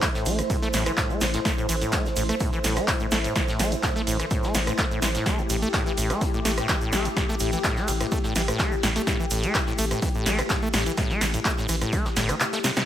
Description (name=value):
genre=acid house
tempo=126 BPM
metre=4/4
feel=straight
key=A minor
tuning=A4 = 441 Hz
part: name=warm analog pad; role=sustained chords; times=0.0-12.9 s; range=A3 to C5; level=-30 LUFS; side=left 1 dB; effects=chorus, sidechain pumping
part: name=acid bass, saw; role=riff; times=0.0-12.8 s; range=G2 to A3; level=-28 LUFS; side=equal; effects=sidechain pumping, ping-pong delay
part: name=electronic kick drum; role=drums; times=0.0-12.0 s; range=none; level=-28 LUFS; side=equal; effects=none
part: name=punchy analog drum machine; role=drums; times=0.0-12.9 s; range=handclaps, hi-hat, ride cymbal, rim click, snare drum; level=-27 LUFS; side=equal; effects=none
part: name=vintage brush drum kit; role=drums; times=0.0-12.9 s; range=hi-hat, snare drum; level=-37 LUFS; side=equal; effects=none
part: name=tube shaker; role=percussion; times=0.0-12.9 s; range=none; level=-36 LUFS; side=right 4 dB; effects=none
part: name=saturated sub bass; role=bass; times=0.3-12.3 s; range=G1 to A1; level=-29 LUFS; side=equal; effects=sidechain pumping
room=light reverb, digital ambience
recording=faint mains hum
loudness=-22 LUFS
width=side -11 dB against mid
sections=0.0-12.9 A section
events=kick drops out 12.4-12.9; drum fill 12.6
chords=0.0 Am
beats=0.02 0.50 0.97 | 1.45 1.93 2.40 2.88 | 3.36 3.83 4.31 4.79 | 5.26 5.74 6.21 6.69 | 7.17 7.64 8.12 8.59 | 9.07 9.55 10.02 10.50 | 10.97 11.45 11.93 12.40